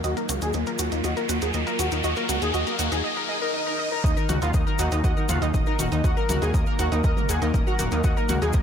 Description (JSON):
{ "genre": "melodic techno", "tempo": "120 BPM", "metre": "4/4", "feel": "straight", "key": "Eb minor", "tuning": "A4 = 440 Hz", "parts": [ { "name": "wide unison lead", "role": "melody", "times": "0.0-8.6 s", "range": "Eb3 to Bb4", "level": "-29 LUFS", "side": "equal", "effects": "ensemble chorus, digital delay" }, { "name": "dark analog pad", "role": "sustained chords", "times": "0.0-8.6 s", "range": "Gb3 to Bb4", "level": "-36 LUFS", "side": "right 1 dB", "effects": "chorus, vintage 12-bit sampler grit, sidechain pumping" }, { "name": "analog pluck", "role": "arpeggios", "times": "0.0-8.6 s", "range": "Eb4 to Eb6", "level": "-29 LUFS", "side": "equal", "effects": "chorus, sidechain pumping, digital delay" }, { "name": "gritty driven synth bass", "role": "bass", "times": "0.0-8.6 s", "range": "Eb1 to Eb2", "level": "-27 LUFS", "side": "equal", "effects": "sidechain pumping" }, { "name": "bowed-like drone", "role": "drone", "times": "0.0-3.0 s", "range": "Eb3 to Bb3", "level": "-40 LUFS", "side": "equal", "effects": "none" }, { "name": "punchy analog drum machine", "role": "drums", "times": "0.0-8.6 s", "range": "hi-hat, toms", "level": "-34 LUFS", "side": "equal", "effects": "sidechain pumping on hats, high-pass filter on hats, sidechain pumping on toms, high-pass filter on toms, high-pass filter on room" }, { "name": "cabasa", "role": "percussion", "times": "0.0-8.6 s", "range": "none", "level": "-36 LUFS", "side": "left 6 dB", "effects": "none" }, { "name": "riser and swell", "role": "sound effects", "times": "0.0-4.0 s", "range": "none", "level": "-30 LUFS", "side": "left 1 dB", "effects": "none" }, { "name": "soft supersaw", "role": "second line", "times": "4.0-8.6 s", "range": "Eb4 to Bb5", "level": "-33 LUFS", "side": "equal", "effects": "sidechain pumping, digital delay" }, { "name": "electronic kick drum", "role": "drums", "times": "4.0-8.6 s", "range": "none", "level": "-24 LUFS", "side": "equal", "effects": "none" } ], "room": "light reverb, digital ambience", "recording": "none", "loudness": "-21 LUFS", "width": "side -8 dB against mid", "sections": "0.0-4.0 A section; 4.0-8.6 B section", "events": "build-up 0.0-4.0; riser 0.0-4.0; filter sweep on synth pluck 0.0-4.0; filter sweep on analog synth lead 0.0-4.0; swell 3.0-4.0; drop 4.0-8.6", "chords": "0.0 Ebm" }